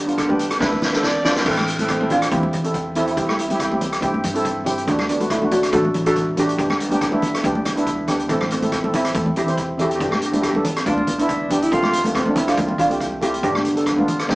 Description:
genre	calypso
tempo	140 BPM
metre	4/4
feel	swing 54% on 16ths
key	unclear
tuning	A4 = 440 Hz
part	steel pan	melody	0.0-14.3 s	A3 to A4	-22 LUFS	right 1 dB	none
part	upright bass	bass	0.0-14.3 s	F1 to G2	-28 LUFS	equal	none
part	steel pan	accompaniment	0.1-14.3 s	A3 to C5	-22 LUFS	equal	none
part	street-band drum kit	drums	0.1-14.3 s	crash cymbal, hi-hat, kick drum, rim click, snare drum	-25 LUFS	equal	none
part	dark alto saxophone	second line	0.2-1.3, 10.7-12.0 s	B3 to D5	-23 LUFS	right 1 dB	none
part	congas	percussion	0.3-14.3 s	none	-26 LUFS	equal	none
room	wet studio reverb, RT60 0.7 s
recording	band playing live in one room, small speaker sound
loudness	-17 LUFS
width	side -21 dB against mid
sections	0.0-1.5 A section; 1.5-14.3 A section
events	drum fill 0.6-1.5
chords	0.0 Gadd9; 1.5 Am; 3.2 C; 4.9 D; 6.6 G; 8.3 Am7; 10.0 G; 11.7 F; 13.4 Gadd9

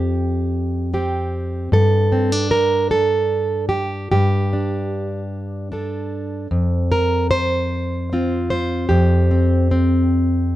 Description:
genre	folk, solo fingerstyle acoustic guitar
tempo	50 BPM (dotted quarters)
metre	6/8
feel	straight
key	F major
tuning	A4 = 440 Hz
part	fingerpicked plugged-in steel-string acoustic guitar	solo	0.0-10.6 s	F2 to C5	-17 LUFS	equal	none
room	light reverb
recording	dark, warm production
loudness	-17 LUFS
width	side -14 dB against mid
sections	0.0-10.6 A section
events	none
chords	0.0 Fsus2; 1.7 Gsus2; 6.5 Fsus2

